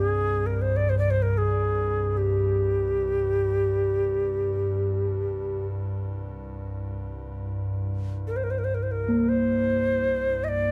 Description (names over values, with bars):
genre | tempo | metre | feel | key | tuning
world meditative, free-time meditation music | free time | none | none | unclear | A4 = 439 Hz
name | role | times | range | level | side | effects
Native American-style cedar flute | melody | 0.0-10.7 s | G4 to Eb5 | -28 LUFS | equal | none
evolving wavetable pad | drone | 0.0-10.7 s | C2 to G2 | -30 LUFS | equal | chorus, built-in reverb
quartz singing bowl | texture | 0.0-0.2, 9.1-10.7 s | Bb3 to C4 | -32 LUFS | equal | none
room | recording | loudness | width
wet booth ambience, RT60 0.2 s | none | -26 LUFS | mono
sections
0.0-10.7 A section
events
none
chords
none